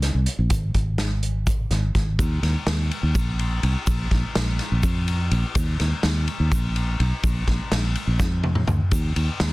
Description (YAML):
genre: progressive instrumental, band music in an uneven meter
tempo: 250 BPM (eighths)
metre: 7/8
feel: straight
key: unclear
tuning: A4 = 440 Hz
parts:
  - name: fingered electric bass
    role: bass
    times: 0.0-9.5 s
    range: Ab1 to F2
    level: -22 LUFS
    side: equal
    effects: none
  - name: vintage drum kit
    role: drums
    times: 0.0-9.5 s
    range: hi-hat, kick drum, ride cymbal, snare drum, toms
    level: -24 LUFS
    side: equal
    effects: none
  - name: tube shaker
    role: percussion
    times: 0.5-9.1 s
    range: none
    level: -42 LUFS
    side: right 3 dB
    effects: none
room: little or no reverb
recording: dense, heavily limited modern master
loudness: -20 LUFS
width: side -21 dB against mid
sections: 0.0-2.2 A section; 2.2-9.5 B section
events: drum fill 8.2-8.9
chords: none